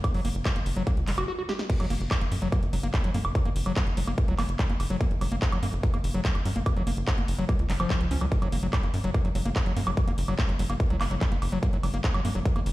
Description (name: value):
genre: psychedelic trance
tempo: 145 BPM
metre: 4/4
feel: straight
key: F# major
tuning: A4 = 440 Hz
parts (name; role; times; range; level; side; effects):
- big-room dance drum kit; drums; 0.0-12.7 s; crash cymbal, handclaps, hi-hat, snare drum, woodblock; -34 LUFS; right 1 dB; none
- electronic kick drum; drums; 0.0-12.5 s; none; -26 LUFS; equal; none
- overdriven acid bass; riff; 0.1-12.6 s; E#3 to G4; -32 LUFS; left 1 dB; auto-pan, sidechain pumping, digital delay
- tight sequencer bass; bass; 0.1-12.7 s; F#1 to F#2; -28 LUFS; equal; none
room: light reverb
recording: played on a big sound system in a bare room, stone room reverb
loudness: -24 LUFS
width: side -17 dB against mid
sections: 0.0-1.7 A section; 1.7-12.7 B section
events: break 1.3-1.7; drum fill 1.5; drop 1.7-12.7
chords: 0.0 F#5